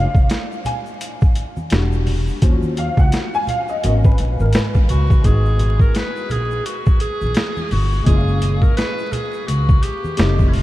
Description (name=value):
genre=hip hop, jazz-hop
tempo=85 BPM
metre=4/4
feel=swing 59% on 16ths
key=G# dorian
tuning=A4 = 442 Hz
part: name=dark baby grand piano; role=accompaniment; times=0.0-10.6 s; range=A#2 to Ab5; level=-25 LUFS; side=left 2 dB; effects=ensemble chorus
part: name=upright bass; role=bass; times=0.0-10.6 s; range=E1 to G#2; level=-18 LUFS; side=equal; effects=none
part: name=boom bap sampler-style drum kit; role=drums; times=0.1-10.6 s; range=hi-hat, kick drum, snare drum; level=-17 LUFS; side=equal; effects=overdrive
part: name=tube shaker and congas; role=percussion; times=0.2-10.6 s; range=none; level=-31 LUFS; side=right 1 dB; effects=none
part: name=bright clarinet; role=melody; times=4.9-10.6 s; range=E4 to B4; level=-24 LUFS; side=equal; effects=tape echo
room=light reverb, studio reverb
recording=vinyl crackle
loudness=-15 LUFS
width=side -16 dB against mid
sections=0.0-5.2 A section; 5.2-10.6 B section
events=grand piano solo 0.0-5.2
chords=0.0 N.C.; 1.7 Em9; 2.4 D#m9; 3.8 G#m11; 5.2 G#m9; 8.1 F#maj9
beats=0.30 1.01 1.71 | 2.42 3.13 3.83 4.54 | 5.24 5.95 6.66 7.36 | 8.07 8.77 9.48 10.19